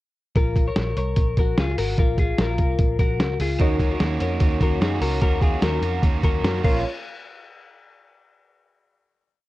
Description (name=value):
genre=jangly indie pop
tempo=148 BPM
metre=4/4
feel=straight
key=Bb minor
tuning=A4 = 436 Hz
part: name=twelve-string electric guitar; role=arpeggios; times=0.4-6.8 s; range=Eb4 to Db5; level=-27 LUFS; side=left 5 dB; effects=analog delay
part: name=vintage muted picked electric bass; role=bass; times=0.4-6.8 s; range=Ab1 to Gb2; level=-25 LUFS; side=equal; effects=none
part: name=lo-fi sampler-style drum kit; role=drums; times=0.4-6.7 s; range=crash cymbal, hi-hat, kick drum, snare drum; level=-22 LUFS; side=equal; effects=none
part: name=overdriven electric guitar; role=accompaniment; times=3.6-6.8 s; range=Bb2 to Gb4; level=-29 LUFS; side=right 6 dB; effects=none
part: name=warbly lo-fi synth keys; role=accompaniment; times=3.6-6.9 s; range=Eb4 to Db5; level=-30 LUFS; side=right 2 dB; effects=chorus
room=light reverb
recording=dark, warm production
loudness=-19 LUFS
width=side -17 dB against mid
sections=0.4-6.8 verse; 6.8-8.5 final hit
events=none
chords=0.4 Bbm; 3.6 Ebm7; 6.6 Bbm; 6.8 N.C.